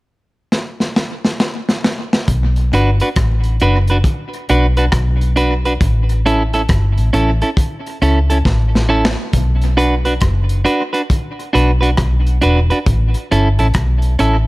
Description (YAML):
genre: roots reggae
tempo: 68 BPM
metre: 4/4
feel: swing 65% on 16ths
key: B minor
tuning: A4 = 440 Hz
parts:
  - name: crunchy breakbeat drum kit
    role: drums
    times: 0.5-14.5 s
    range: hi-hat, kick drum, rim click, snare drum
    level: -18 LUFS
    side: equal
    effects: tape echo
  - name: vintage muted fingered electric bass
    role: bass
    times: 2.3-14.5 s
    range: E1 to C#2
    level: -14 LUFS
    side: equal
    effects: none
  - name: clean electric guitar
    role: accompaniment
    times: 2.7-14.4 s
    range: C#4 to B4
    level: -18 LUFS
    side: right 2 dB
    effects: tape echo
room: studio reverb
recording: none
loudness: -13 LUFS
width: side -21 dB against mid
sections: 0.0-2.3 A section; 2.3-9.3 B section; 9.3-14.5 C section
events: drum fill 0.5-2.3, 8.5-9.3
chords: 0.0 N.C.; 2.3 Bm; 5.8 A; 9.3 Bm; 12.9 A